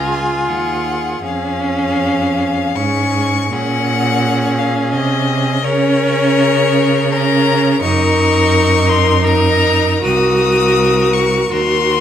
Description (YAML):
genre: classical, slow romantic movement for string quartet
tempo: 72-89 BPM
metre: 3/4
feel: rubato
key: unclear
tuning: A4 = 441 Hz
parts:
  - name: clear violin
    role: melody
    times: 0.0-12.0 s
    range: Db5 to Eb6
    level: -18 LUFS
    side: left 8 dB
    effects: none
  - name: clear violin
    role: second line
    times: 0.0-12.0 s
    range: Ab4 to Bb4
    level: -19 LUFS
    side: left 2 dB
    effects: none
  - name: rich viola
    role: accompaniment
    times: 0.0-12.0 s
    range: Db4 to Gb4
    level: -18 LUFS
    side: right 2 dB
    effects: none
  - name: rich cello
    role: bass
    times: 0.0-12.0 s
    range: C2 to Db3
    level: -18 LUFS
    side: right 4 dB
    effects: none
room: wet recital hall reverb, RT60 1.4 s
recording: none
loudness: -12 LUFS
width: side -9 dB against mid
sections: 0.0-12.0 A section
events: none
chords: 0.0 Db; 1.2 Db/F; 3.5 Bbm7; 5.6 Bbm/Db; 7.8 Gb6; 10.0 Cm7b5